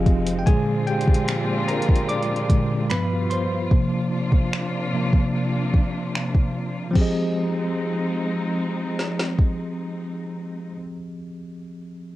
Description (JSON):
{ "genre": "contemporary R&B", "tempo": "74 BPM", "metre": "4/4", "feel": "straight", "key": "F dorian", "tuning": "A4 = 440 Hz", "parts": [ { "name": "bell-like tine electric piano", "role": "accompaniment", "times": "0.0-12.2 s", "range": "G2 to D6", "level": "-24 LUFS", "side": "equal", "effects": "medium stereo tremolo" }, { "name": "rich studio string section", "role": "sustained chords", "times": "0.0-10.7 s", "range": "G2 to F4", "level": "-29 LUFS", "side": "left 1 dB", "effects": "sidechain pumping" }, { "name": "soft synth bell", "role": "texture", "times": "0.0-0.7 s", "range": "none", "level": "barely audible", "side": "none", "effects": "none" }, { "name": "smooth R&B drum kit", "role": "drums", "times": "0.1-9.6 s", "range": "crash cymbal, finger snaps, hi-hat, kick drum, snare drum", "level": "-20 LUFS", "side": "equal", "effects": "cassette tape" } ], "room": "light reverb", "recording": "home recording on cassette", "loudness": "-20 LUFS", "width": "side -15 dB against mid", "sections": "0.5-7.0 A section; 7.0-10.2 B section", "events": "tine electric piano solo 0.5-7.0", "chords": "0.5 Bb13; 2.9 G7; 3.7 C9sus4; 7.0 Fm7", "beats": "| 0.47 1.28 2.09 2.90 | 3.71 4.52 5.33 6.14 | 6.96 7.77 8.58 9.39" }